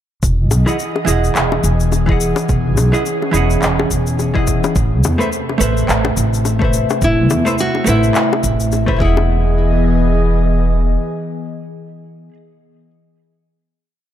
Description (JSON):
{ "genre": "sunset chillout", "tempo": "106 BPM", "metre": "4/4", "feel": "swing 57% on 16ths", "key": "E major", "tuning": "A4 = 440 Hz", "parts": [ { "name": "airy breathy pad", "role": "sustained chords", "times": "0.4-12.3 s", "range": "C3 to D#5", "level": "-22 LUFS", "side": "equal", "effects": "chorus" }, { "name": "upright bass", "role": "bass", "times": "0.2-10.9 s", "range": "E1 to E2", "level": "-16 LUFS", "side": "equal", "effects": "none" }, { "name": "electronic kick drum", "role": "drums", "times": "0.2-9.1 s", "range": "none", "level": "-19 LUFS", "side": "equal", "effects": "none" }, { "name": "electronic shaker and handclaps", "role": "drums", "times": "0.2-8.8 s", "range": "none", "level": "-22 LUFS", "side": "left 2 dB", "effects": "none" }, { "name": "bongos", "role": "percussion", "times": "0.5-9.3 s", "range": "none", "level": "-25 LUFS", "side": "left 5 dB", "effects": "none" }, { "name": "vintage hollow-body jazz guitar", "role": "accompaniment", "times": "0.7-12.4 s", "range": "E3 to F#5", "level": "-20 LUFS", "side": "moving between left 5 dB and right 5 dB", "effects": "auto-pan, ping-pong delay" }, { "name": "nylon-string guitar", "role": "melody", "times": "7.0-12.3 s", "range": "E4 to F#4", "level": "-19 LUFS", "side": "equal", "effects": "digital delay" } ], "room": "moderate plate reverb, RT60 2.3 s", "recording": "dark, warm production", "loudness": "-13 LUFS", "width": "side -11 dB against mid", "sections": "0.2-9.3 groove; 9.3-11.6 final hit", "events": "none", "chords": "0.2 Emaj7; 4.8 Amadd9; 9.0 Emaj7" }